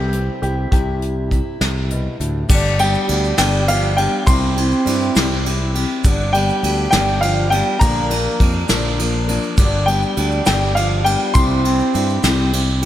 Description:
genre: indie folk with a building arrangement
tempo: 68 BPM (dotted quarters)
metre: 6/8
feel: straight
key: unclear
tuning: A4 = 440 Hz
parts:
  - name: clear upright piano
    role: melody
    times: 0.0-12.8 s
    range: G4 to C6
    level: -21 LUFS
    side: left 2 dB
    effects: slapback echo
  - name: fingerpicked steel-string acoustic guitar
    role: accompaniment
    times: 0.0-2.5 s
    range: A2 to E4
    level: -27 LUFS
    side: left 1 dB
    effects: slapback echo
  - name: fingered electric bass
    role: bass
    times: 0.0-12.9 s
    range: G1 to G2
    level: -20 LUFS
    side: equal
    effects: none
  - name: soft brush drum kit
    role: drums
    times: 0.1-12.9 s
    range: crash cymbal, hi-hat, kick drum, ride cymbal, snare drum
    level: -19 LUFS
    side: equal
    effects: none
  - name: picked steel-string acoustic guitar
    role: accompaniment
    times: 2.5-12.9 s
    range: G2 to Bb4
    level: -22 LUFS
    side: left 3 dB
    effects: slapback echo
  - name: tube shaker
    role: percussion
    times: 2.5-12.4 s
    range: none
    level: -33 LUFS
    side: right 8 dB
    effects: none
  - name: mellow French horn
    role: second line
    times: 2.8-12.8 s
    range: F3 to C4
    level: -23 LUFS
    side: right 3 dB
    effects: slapback echo
room: moderate lush hall reverb, RT60 2.8 s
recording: big arena sound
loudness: -15 LUFS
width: side -12 dB against mid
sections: 0.0-2.5 A section; 2.5-12.9 B section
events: none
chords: 0.0 C; 2.5 G; 4.3 C; 6.0 G; 7.8 Bb; 9.6 G; 11.4 C

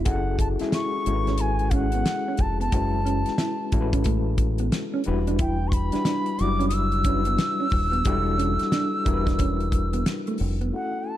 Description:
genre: R&B, neo-soul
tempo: 90 BPM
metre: 4/4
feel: swing 63% on 16ths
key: unclear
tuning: A4 = 440 Hz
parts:
  - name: mellow electric guitar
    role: second line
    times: 0.0-10.7 s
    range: A3 to F#4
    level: -32 LUFS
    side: right 6 dB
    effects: none
  - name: overdriven reed electric piano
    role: accompaniment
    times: 0.0-11.2 s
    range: F#3 to D5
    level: -28 LUFS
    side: left 4 dB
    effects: fast tremolo
  - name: deep dub fingered electric bass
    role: bass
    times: 0.0-10.7 s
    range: D#1 to A1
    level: -26 LUFS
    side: equal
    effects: none
  - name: bright reedy bansuri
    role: melody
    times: 0.1-11.2 s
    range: E#5 to E6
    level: -28 LUFS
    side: equal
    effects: none
  - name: damped 70s drum kit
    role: drums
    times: 0.1-10.7 s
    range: hi-hat, kick drum, snare drum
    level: -26 LUFS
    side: equal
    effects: none
room: small room ambience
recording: dark, warm production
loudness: -21 LUFS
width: side -12 dB against mid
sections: 0.1-10.7 A section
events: none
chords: 0.1 F#m9; 5.1 Em9

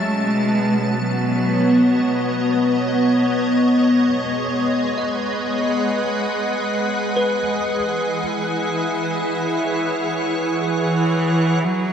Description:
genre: ambient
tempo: free time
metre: none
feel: none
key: unclear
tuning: A4 = 440 Hz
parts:
  - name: warm cello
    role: melody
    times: 0.0-2.4, 10.7-11.9 s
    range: E3 to G#3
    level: -22 LUFS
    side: right 1 dB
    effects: diffuse ambient delay
  - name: soft additive organ-like pad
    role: sustained chords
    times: 0.0-11.9 s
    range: B2 to A5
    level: -18 LUFS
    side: equal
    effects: ensemble chorus, built-in reverb
  - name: bell-like tine electric piano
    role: arpeggios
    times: 0.0-8.2 s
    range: B4 to D#5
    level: -28 LUFS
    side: left 1 dB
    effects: phaser, diffuse ambient delay
room: wet huge ambient reverb, RT60 9.3 s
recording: none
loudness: -17 LUFS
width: side -8 dB against mid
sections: 0.0-11.6 A section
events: fade-in on tine electric piano 0.0-11.6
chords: 0.0 B9; 3.9 G#m7; 7.8 E69

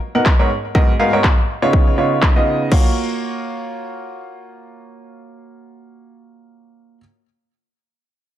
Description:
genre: piano house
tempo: 122 BPM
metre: 4/4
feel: swing 56% on 16ths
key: F# major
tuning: A4 = 440 Hz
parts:
  - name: clear baby grand piano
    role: riff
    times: 0.1-7.0 s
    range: G#2 to F#5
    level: -19 LUFS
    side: right 1 dB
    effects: sidechain pumping, ping-pong delay
  - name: electronic kick drum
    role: drums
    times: 0.3-2.8 s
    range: none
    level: -15 LUFS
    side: equal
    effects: overdrive
  - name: house drum kit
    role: drums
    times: 0.3-2.8 s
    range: crash cymbal, handclaps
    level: -23 LUFS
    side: left 1 dB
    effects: overdrive, low-pass filter on snare, low-pass filter on cymbals, low-pass filter on room
room: light reverb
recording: none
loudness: -14 LUFS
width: side -12 dB against mid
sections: 0.0-2.7 A section; 2.7-6.7 B section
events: none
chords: 0.0 Bmaj9; 0.5 G#m11; 1.5 C#9; 2.7 F#maj7

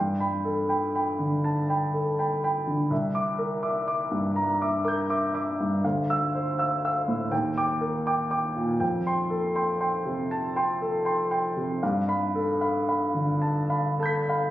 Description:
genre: classical, impressionist solo piano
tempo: 40 BPM (dotted quarters)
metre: 6/8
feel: uneven beats, rubato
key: unclear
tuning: A4 = 441 Hz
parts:
  - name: warm grand piano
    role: solo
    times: 0.0-14.5 s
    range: C2 to B6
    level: -24 LUFS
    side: equal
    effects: none
room: moderate concert hall reverb, RT60 2.3 s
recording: recorded on a phone in the room, studio reverb, compression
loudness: -24 LUFS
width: side -14 dB against mid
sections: 0.0-14.5 A section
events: none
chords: 0.0 Gadd9; 2.9 C9; 5.8 Dm9; 7.3 Ebmaj7; 8.8 Fadd9; 11.8 G9

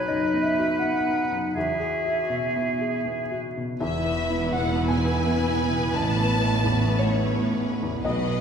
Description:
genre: cinematic, emotional film score for orchestra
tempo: 79-87 BPM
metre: 3/4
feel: rubato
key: E major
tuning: A4 = 438 Hz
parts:
  - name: clear oboe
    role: second line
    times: 0.0-3.4 s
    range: G#4 to B4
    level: -30 LUFS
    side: right 2 dB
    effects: none
  - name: mellow hollow silver concert flute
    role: second line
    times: 0.0-3.4 s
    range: D#5 to F#5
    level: -27 LUFS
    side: right 1 dB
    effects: none
  - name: warm clarinet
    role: second line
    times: 0.0-3.4 s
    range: D#4 to F#4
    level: -29 LUFS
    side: equal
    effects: none
  - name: felt-muted upright piano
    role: accompaniment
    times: 0.0-8.4 s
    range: A1 to A5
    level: -28 LUFS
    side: left 2 dB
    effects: none
  - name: warm symphonic violin section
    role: melody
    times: 3.8-8.4 s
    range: B4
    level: -32 LUFS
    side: left 2 dB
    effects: none
  - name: rich symphonic violin section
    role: second line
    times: 3.8-8.4 s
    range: C#5 to A5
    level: -30 LUFS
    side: equal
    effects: none
  - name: rich studio viola section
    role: accompaniment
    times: 3.8-8.4 s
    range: B3 to F#4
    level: -32 LUFS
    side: right 3 dB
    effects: none
  - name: warm French horn section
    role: sustained chords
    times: 3.8-8.4 s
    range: B3 to F#4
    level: -32 LUFS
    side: left 2 dB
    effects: none
  - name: rich symphonic cello section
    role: bass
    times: 3.8-8.4 s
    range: E2 to B2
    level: -29 LUFS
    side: right 2 dB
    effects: none
  - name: rich symphonic double bass section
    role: bass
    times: 3.8-8.4 s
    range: E1 to B1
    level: -28 LUFS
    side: right 2 dB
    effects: none
room: wet concert hall reverb, RT60 1.9 s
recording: recorded in a church or concert hall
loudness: -22 LUFS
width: side -7 dB against mid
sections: 0.0-3.8 A section; 3.8-8.4 A section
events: none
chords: 0.0 B; 1.6 Eadd9; 5.9 Aadd9

